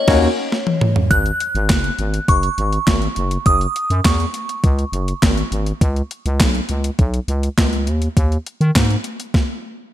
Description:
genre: early-eighties boogie funk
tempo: 102 BPM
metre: 4/4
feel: straight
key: unclear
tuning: A4 = 439 Hz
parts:
  - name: glassy synth bell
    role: melody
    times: 0.0-5.5 s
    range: C#5 to F#6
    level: -21 LUFS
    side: equal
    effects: chorus, slapback echo, analog delay
  - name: growling FM bass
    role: bass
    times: 0.1-9.0 s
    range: F#1 to D#3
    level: -19 LUFS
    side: equal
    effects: none
  - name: crisp 8-bit digital drum machine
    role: drums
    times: 0.1-9.5 s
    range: crash cymbal, handclaps, hi-hat, kick drum, snare drum, toms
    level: -17 LUFS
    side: equal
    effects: overdrive
room: moderate recital hall reverb, RT60 1.4 s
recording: big arena sound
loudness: -16 LUFS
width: side -12 dB against mid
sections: 0.0-1.1 A section; 1.1-9.9 B section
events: band accent 0.0-1.1; drum fill 0.5-1.1; stop 9.3-9.9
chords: 0.0 D#m7; 1.1 F#sus2; 3.2 F#5; 5.8 Bsus2; 7.9 D#sus4

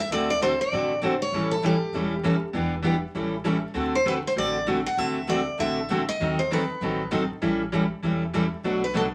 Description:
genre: acoustic string swing (jazz manouche)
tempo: 197 BPM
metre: 4/4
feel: swing 58% on 8ths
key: unclear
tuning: A4 = 444 Hz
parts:
  - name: picked steel-string acoustic guitar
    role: melody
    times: 0.0-9.0 s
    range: G4 to F#5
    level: -29 LUFS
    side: equal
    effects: none
  - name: picked steel-string acoustic guitar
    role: accompaniment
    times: 0.1-9.1 s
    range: B2 to A4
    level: -28 LUFS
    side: equal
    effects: none
  - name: picked steel-string acoustic guitar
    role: accompaniment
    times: 0.1-9.1 s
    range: B2 to B4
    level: -35 LUFS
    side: equal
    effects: none
  - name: upright bass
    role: bass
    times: 0.1-9.1 s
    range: E1 to D#2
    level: -43 LUFS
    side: equal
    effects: none
room: wet studio reverb, RT60 0.5 s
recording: vinyl crackle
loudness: -25 LUFS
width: mono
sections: 0.0-9.1 A section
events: none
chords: 0.1 D7; 1.3 A7; 2.5 Em7; 3.2 A7; 3.8 D7; 6.2 D#dim7; 7.4 A7; 8.6 Bm7

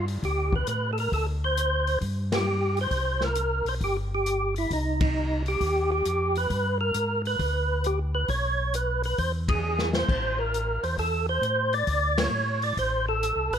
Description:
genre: soul jazz organ trio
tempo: 134 BPM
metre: 4/4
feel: swing 67% on 8ths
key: G mixolydian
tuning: A4 = 440 Hz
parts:
  - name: percussive tonewheel organ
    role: melody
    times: 0.0-13.6 s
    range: Eb4 to D5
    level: -26 LUFS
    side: right 1 dB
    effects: slow rotary speaker, overdrive, chorus vibrato
  - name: mellow tonewheel organ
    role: bass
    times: 0.0-13.6 s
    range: G1 to A2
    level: -28 LUFS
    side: equal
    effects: slow rotary speaker
  - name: open jazz drum kit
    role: drums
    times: 0.1-13.6 s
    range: crash cymbal, hi-hat, kick drum, ride cymbal, snare drum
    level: -32 LUFS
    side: left 2 dB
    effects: none
room: light reverb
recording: close, detailed microphones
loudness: -24 LUFS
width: side -8 dB against mid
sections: 0.0-13.6 A section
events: band accent 2.2, 4.9, 9.4, 12.1; drum fill 9.6-10.1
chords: 0.0 Gsus2; 1.1 Amadd11/D; 2.0 Gsus4; 2.9 C5; 4.7 Cm; 6.5 G; 8.3 Bsus2; 9.2 Eaug; 10.1 Am; 11.9 D5

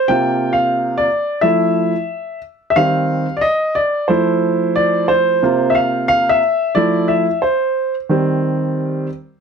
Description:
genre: hip hop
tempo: 90 BPM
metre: 4/4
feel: swing 66% on 16ths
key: F major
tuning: A4 = 440 Hz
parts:
  - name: warm upright piano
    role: solo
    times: 0.0-9.1 s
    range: C3 to G5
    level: -14 LUFS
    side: equal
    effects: none
room: moderate studio reverb, RT60 0.6 s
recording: none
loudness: -14 LUFS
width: side -6 dB against mid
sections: 0.0-5.4 A section; 5.4-9.4 B section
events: upright piano solo 0.0-5.4, 5.4-9.4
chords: 0.1 C7sus4; 1.4 Fmaj7; 2.8 Eb69; 4.1 Fmaj7; 5.4 C7sus4; 6.8 Fmaj7; 8.1 Eb6

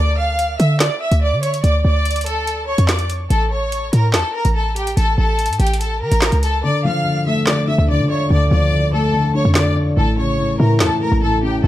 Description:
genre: hip hop, drill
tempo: 144 BPM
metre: 4/4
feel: half-time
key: D harmonic minor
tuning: A4 = 440 Hz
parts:
  - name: clear studio violin section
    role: melody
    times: 0.0-11.7 s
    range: G4 to F6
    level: -20 LUFS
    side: equal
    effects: digital delay
  - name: short 808-style bass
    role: bass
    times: 0.0-11.7 s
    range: A1 to E3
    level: -17 LUFS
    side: equal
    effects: none
  - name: drill drum kit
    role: drums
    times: 0.4-10.9 s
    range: handclaps, hi-hat, snare drum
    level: -21 LUFS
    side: equal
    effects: none
  - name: felt-muted upright piano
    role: accompaniment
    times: 6.6-11.7 s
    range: A2 to D5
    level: -18 LUFS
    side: left 1 dB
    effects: none
room: light reverb, small room ambience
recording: dark, warm production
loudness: -14 LUFS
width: side -14 dB against mid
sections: 0.0-11.7 A section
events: hi-hats muted 6.6-11.7; kick muted 6.6-7.5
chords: 0.0 Dm; 3.3 A; 6.6 Dm; 10.0 A

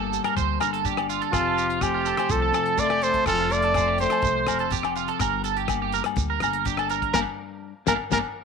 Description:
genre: highlife guitar band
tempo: 124 BPM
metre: 4/4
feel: straight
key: unclear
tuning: A4 = 440 Hz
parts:
  - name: clean electric guitar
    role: accompaniment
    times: 0.0-8.2 s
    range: F2 to A4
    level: -33 LUFS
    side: left 16 dB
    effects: none
  - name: electric guitar at the edge of break-up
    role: arpeggios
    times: 0.0-8.2 s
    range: D4 to C5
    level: -28 LUFS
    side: right 14 dB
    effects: analog chorus, slapback echo
  - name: upright bass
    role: bass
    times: 0.0-8.2 s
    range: F1 to D2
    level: -32 LUFS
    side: right 1 dB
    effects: none
  - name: damped 70s drum kit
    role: drums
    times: 0.1-8.2 s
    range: hi-hat, kick drum, rim click, snare drum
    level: -32 LUFS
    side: left 3 dB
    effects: none
  - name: shekere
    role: percussion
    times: 0.1-8.2 s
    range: none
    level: -32 LUFS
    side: right 7 dB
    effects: none
  - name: agogo bells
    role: percussion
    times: 0.2-8.2 s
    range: none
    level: -31 LUFS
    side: left 16 dB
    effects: none
  - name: clear trumpet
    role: melody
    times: 1.3-8.2 s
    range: F4 to D5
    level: -23 LUFS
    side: right 1 dB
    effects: none
  - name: breathy trombone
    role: second line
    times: 1.4-8.2 s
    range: C3 to Bb3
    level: -32 LUFS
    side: left 13 dB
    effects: none
room: moderate spring reverb, RT60 1.6 s, studio ambience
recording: 1960s-style stereo with parts hard left and right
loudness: -21 LUFS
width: side -5 dB against mid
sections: 0.0-8.4 A section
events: band accent 7.1-8.4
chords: 0.0 Gm; 1.3 F; 5.2 Gm

